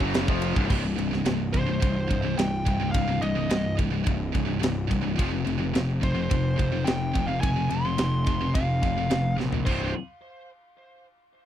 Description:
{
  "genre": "heavy metal",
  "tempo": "107 BPM",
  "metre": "4/4",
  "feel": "straight",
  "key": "unclear",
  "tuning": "A4 = 441 Hz",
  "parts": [
    { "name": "heavy high-gain guitar", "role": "riff", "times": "0.0-9.9 s", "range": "C2 to F#3", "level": "-29 LUFS", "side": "left 8 dB", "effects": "distortion" },
    { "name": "heavy high-gain guitar", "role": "riff", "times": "0.0-9.9 s", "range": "C2 to F#3", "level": "-31 LUFS", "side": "right 10 dB", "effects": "distortion" },
    { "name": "overdriven semi-hollow guitar", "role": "riff", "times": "0.0-0.7 s", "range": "C2 to F#3", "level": "-29 LUFS", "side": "equal", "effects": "none" },
    { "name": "fuzz picked electric bass", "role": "bass", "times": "0.0-9.9 s", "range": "C1 to Bb1", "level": "-29 LUFS", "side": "equal", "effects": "overdrive" },
    { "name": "tight metal drum kit", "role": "drums", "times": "0.0-9.8 s", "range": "crash cymbal, kick drum, ride cymbal, snare drum, toms", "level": "-27 LUFS", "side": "right 1 dB", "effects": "none" },
    { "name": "high-gain lead guitar", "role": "melody", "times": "1.5-9.9 s", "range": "C5 to C6", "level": "-32 LUFS", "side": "equal", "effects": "distortion, tape echo" }
  ],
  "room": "little or no reverb",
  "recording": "dry, close 1970s-style studio recording",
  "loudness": "-23 LUFS",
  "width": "side -11 dB against mid",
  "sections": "0.7-9.7 A section; 9.7-11.5 B section",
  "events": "drum fill 9.4",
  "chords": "0.0 C5; 5.2 F5; 9.7 C5",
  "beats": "0.14 | 0.69 1.25 1.81 2.38 | 2.94 3.50 4.06 4.62 | 5.18 5.74 6.30 6.86 | 7.42 7.98 8.54 9.10 | 9.66"
}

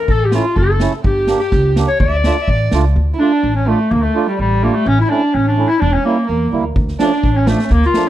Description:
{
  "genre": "klezmer",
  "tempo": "126 BPM",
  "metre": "2/4",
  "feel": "straight",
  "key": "D harmonic minor",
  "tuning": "A4 = 438 Hz",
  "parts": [
    { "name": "mellow clarinet", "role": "melody", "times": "0.0-8.1 s", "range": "G3 to D5", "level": "-16 LUFS", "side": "left 2 dB", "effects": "none" },
    { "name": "dark violin", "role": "second line", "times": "0.0-8.1 s", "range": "G3 to E5", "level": "-22 LUFS", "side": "right 7 dB", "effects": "slapback echo" },
    { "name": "upright bass", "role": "bass", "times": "0.1-7.8 s", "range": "E1 to E2", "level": "-16 LUFS", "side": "equal", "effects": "none" },
    { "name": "street-band drum kit", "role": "drums", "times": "0.1-2.8, 6.8-8.1 s", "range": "kick drum, snare drum", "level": "-19 LUFS", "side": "equal", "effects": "none" },
    { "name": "mellow accordion", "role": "accompaniment", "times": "0.3-8.1 s", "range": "F3 to G4", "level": "-21 LUFS", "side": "right 6 dB", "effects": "none" }
  ],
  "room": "small room reverb",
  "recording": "dry, close 1970s-style studio recording",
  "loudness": "-12 LUFS",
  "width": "side -13 dB against mid",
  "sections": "0.0-3.0 A section; 3.0-8.1 B section",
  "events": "none",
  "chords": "0.0 A; 1.0 Gm; 2.0 Dm; 4.9 A; 5.8 Edim; 6.8 Dm",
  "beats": "| 0.09 0.56 | 1.04 1.52 | 2.00 2.48 | 2.95 3.43 | 3.91 4.38 | 4.86 5.33 | 5.81 6.29 | 6.76 7.23 | 7.71"
}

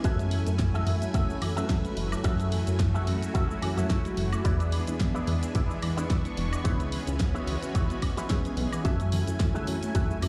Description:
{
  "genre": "nu-disco, nu disco",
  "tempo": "109 BPM",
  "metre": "4/4",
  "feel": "swing 55% on 16ths",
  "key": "F# minor",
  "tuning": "A4 = 440 Hz",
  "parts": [
    { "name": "warm analog pad", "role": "accompaniment", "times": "0.0-10.3 s", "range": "E3 to C#6", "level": "-37 LUFS", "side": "equal", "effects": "chorus, sidechain pumping, dub echo" },
    { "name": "string machine, full ensemble", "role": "sustained chords", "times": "0.0-10.3 s", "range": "A3 to G#5", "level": "-43 LUFS", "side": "equal", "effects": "phaser, ensemble chorus, sidechain pumping" },
    { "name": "soft round pluck", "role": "arpeggios", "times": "0.0-10.3 s", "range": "E3 to B4", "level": "-40 LUFS", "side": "equal", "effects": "none" },
    { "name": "electric guitar with an envelope filter", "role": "riff", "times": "0.0-10.2 s", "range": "E4 to G#5", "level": "-39 LUFS", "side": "equal", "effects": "analog chorus, dub echo" },
    { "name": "chorused synth bass", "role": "bass", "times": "0.0-10.3 s", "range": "E1 to F#2", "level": "-31 LUFS", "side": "equal", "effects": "none" },
    { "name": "electronic kick drum", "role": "drums", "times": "0.0-10.1 s", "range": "none", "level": "-30 LUFS", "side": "equal", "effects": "none" },
    { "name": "pop drum kit", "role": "drums", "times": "0.0-10.3 s", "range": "hi-hat, shaker, snare drum, woodblock", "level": "-39 LUFS", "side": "equal", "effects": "none" },
    { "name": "tambourine and congas", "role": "percussion", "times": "8.9-10.3 s", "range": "none", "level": "-39 LUFS", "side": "equal", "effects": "none" }
  ],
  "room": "little or no reverb",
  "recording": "played on a big sound system in a bare room, large studio reverb",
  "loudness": "-28 LUFS",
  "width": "mono",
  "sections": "0.0-10.3 A section",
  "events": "clean electric guitar fill 3.3-4.4",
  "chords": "0.0 F#m9; 4.4 E7; 6.6 C#m7; 8.8 F#m9",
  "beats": "| 0.04 0.59 1.14 1.69 | 2.25 2.79 3.35 3.90 | 4.45 5.00 5.55 6.10 | 6.65 7.20 7.75 8.30 | 8.85 9.40 9.95"
}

